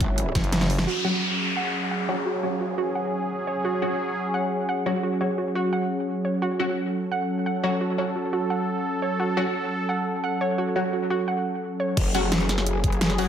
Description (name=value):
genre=dark technical drum and bass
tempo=173 BPM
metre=4/4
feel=straight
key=F# minor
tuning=A4 = 439 Hz
part: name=sweeping resonant pad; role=sustained chords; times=0.0-13.3 s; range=F#3 to A4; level=-27 LUFS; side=right 1 dB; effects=chorus, sidechain pumping
part: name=growl bass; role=bass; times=0.0-0.3, 12.0-13.3 s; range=F#1 to G#1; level=-26 LUFS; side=equal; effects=chorus, tube saturation
part: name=dubstep drum kit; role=drums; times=0.0-0.9, 12.0-13.3 s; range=crash cymbal, hi-hat, snare drum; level=-26 LUFS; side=equal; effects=overdrive
part: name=electronic kick drum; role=drums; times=0.0-0.4, 12.0-12.9 s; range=none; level=-24 LUFS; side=equal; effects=overdrive
part: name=growling FM bass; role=bass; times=0.4-0.9 s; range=F#1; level=-25 LUFS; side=equal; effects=tube saturation
part: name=warbly dusty pluck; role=arpeggios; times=0.9-11.9 s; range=F#4 to F#5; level=-29 LUFS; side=right 3 dB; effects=chorus, sidechain pumping, dub echo
part: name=downlifter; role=sound effects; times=0.9-3.6 s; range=none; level=-29 LUFS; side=left 1 dB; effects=none
part: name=orchestra-hit-like synth stab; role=stabs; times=1.0-13.2 s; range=F#3 to F#4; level=-29 LUFS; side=left 3 dB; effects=built-in reverb, dub echo
room=moderate digital room reverb, RT60 1.4 s, digital ambience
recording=none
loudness=-23 LUFS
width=side -9 dB against mid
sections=0.9-12.0 A section; 12.0-13.3 B section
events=drum fill 0.4-0.9; band accent 0.8; filter sweep on synth stab 0.9-12.0; drop 12.0-13.3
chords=0.0 F#sus2; 0.9 F#madd9; 12.0 F#sus2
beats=0.18 0.53 | 0.87 1.22 1.57 1.91 | 2.26 2.61 2.95 3.30 | 3.65 3.99 4.34 4.69 | 5.03 5.38 5.73 6.08 | 6.42 6.77 7.12 7.46 | 7.81 8.16 8.50 8.85 | 9.20 9.54 9.89 10.24 | 10.58 10.93 11.28 11.62 | 11.97 12.32 12.66 13.01